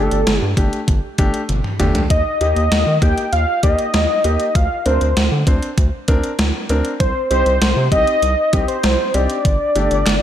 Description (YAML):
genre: synth-pop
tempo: 98 BPM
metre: 4/4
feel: straight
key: C dorian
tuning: A4 = 439 Hz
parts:
  - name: wide unison lead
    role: melody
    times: 0.0-10.2 s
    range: A4 to G5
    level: -18 LUFS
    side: equal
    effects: slapback echo
  - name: warm grand piano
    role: accompaniment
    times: 0.0-10.0 s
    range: A3 to C5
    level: -24 LUFS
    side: left 2 dB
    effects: none
  - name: round analog bass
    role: bass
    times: 0.0-10.2 s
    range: G1 to Eb3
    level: -19 LUFS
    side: equal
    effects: none
  - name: gated 80s digital drum machine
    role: drums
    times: 0.1-10.2 s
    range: handclaps, hi-hat, kick drum, snare drum, toms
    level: -18 LUFS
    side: equal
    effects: gated reverb, gated reverb snare, overdrive
room: light reverb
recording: none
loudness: -14 LUFS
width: side -10 dB against mid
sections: 0.0-10.2 A section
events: drum fill 1.5-2.1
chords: 0.0 Gsus2; 2.1 Eb; 4.6 Bbadd9/D; 7.0 Cm; 9.5 Gsus2